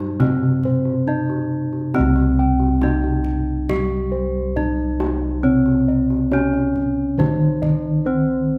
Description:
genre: Javanese gamelan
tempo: 69 BPM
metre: 4/4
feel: straight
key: unclear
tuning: A4 = 438 Hz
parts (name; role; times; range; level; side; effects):
- gamelan-type bronze metallophone; melody; 0.0-8.6 s; C4 to G4-30c; -23 LUFS; equal; none
- gamelan-type bronze metallophone; accompaniment; 0.0-8.6 s; C3 to G3-30c; -27 LUFS; equal; none
- gamelan-type bossed gongs; bass; 0.0-8.6 s; C2 to G4-30c; -25 LUFS; equal; none
- kendang; percussion; 0.0-7.8 s; none; -31 LUFS; equal; none
- gamelan-type bossed gongs; arpeggios; 0.2-8.5 s; C5 to G5-30c; -32 LUFS; equal; none
room: light reverb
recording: close, detailed microphones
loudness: -19 LUFS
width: mono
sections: 0.0-8.6 A section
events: none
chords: none

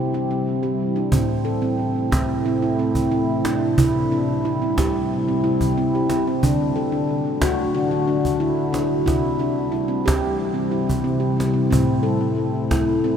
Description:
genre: world meditative, meditative tuned percussion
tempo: 91 BPM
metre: 4/4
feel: straight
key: C lydian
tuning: A4 = 439 Hz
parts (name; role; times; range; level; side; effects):
- deep dark ambient pad; sustained chords; 0.0-13.2 s; C3 to F#4; -23 LUFS; left 1 dB; chorus, built-in reverb
- handpan; arpeggios; 0.0-13.2 s; A2 to A4; -21 LUFS; equal; diffuse ambient delay
- cajon; percussion; 1.1-13.0 s; none; -25 LUFS; right 1 dB; none
room: wet huge ambient reverb, RT60 7.3 s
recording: dreamy mix soaked in reverb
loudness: -18 LUFS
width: side -8 dB against mid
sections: 0.0-1.1 A section; 1.1-13.2 B section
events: none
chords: 0.0 C; 1.1 Am; 3.8 C; 6.4 D; 9.1 C; 11.7 Am

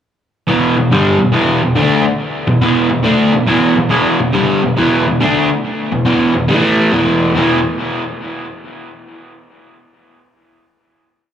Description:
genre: rock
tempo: 140 BPM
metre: 4/4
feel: swing 67% on 8ths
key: E minor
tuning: A4 = 441 Hz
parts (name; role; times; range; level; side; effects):
- overdriven semi-hollow guitar; solo; 0.5-7.6 s; E2 to D4; -12 LUFS; equal; slapback echo, tape echo
room: light reverb, digital ambience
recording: live gig heard through the venue's PA, club reverb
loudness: -11 LUFS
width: side -9 dB against mid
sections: 0.5-7.3 riff; 7.3-9.1 final chord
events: none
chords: 0.5 Em; 6.5 A5; 6.9 E5

